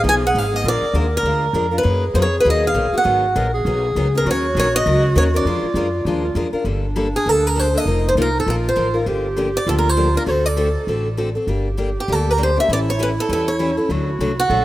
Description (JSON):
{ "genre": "acoustic string swing (jazz manouche)", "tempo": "199 BPM", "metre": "4/4", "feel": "swing 58% on 8ths", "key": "G minor from 6.7 s", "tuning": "A4 = 438 Hz", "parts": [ { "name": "breathy clarinet", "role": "second line", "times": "0.0-14.6 s", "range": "D4 to Bb4", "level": "-24 LUFS", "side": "right 1 dB", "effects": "none" }, { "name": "picked steel-string acoustic guitar", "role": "accompaniment", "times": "0.0-14.6 s", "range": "B2 to Bb4", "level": "-24 LUFS", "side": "left 2 dB", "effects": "none" }, { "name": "upright bass", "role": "bass", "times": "0.0-14.6 s", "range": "F1 to F#2", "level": "-21 LUFS", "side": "equal", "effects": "none" }, { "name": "picked swing-style acoustic guitar", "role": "melody", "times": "0.1-14.6 s", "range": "F#4 to Ab5", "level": "-19 LUFS", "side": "right 1 dB", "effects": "none" } ], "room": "light reverb, studio ambience", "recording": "rough home demo mix", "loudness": "-16 LUFS", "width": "side -15 dB against mid", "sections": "0.0-6.7 A section; 6.7-14.6 B section", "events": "none", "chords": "0.0 Fm7b5; 0.6 Bb7; 1.9 Bmaj7; 3.1 Abm7; 4.3 Ebm7; 5.5 Bb7; 6.7 Gmadd9; 7.9 F7sus4; 9.1 Gm7; 10.3 D7; 11.5 Gm; 12.7 A7; 13.9 D", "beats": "0.05 0.35 | 0.65 0.95 1.25 1.55 | 1.85 2.15 2.45 2.75 | 3.05 3.35 3.65 3.96 | 4.26 4.56 4.86 5.16 | 5.46 5.76 6.06 6.36 | 6.66 6.96 7.26 7.57 | 7.87 8.17 8.47 8.77 | 9.07 9.37 9.67 9.97 | 10.28 10.58 10.88 11.18 | 11.48 11.78 12.08 12.39 | 12.69 12.99 13.29 13.59 | 13.89 14.20 14.50" }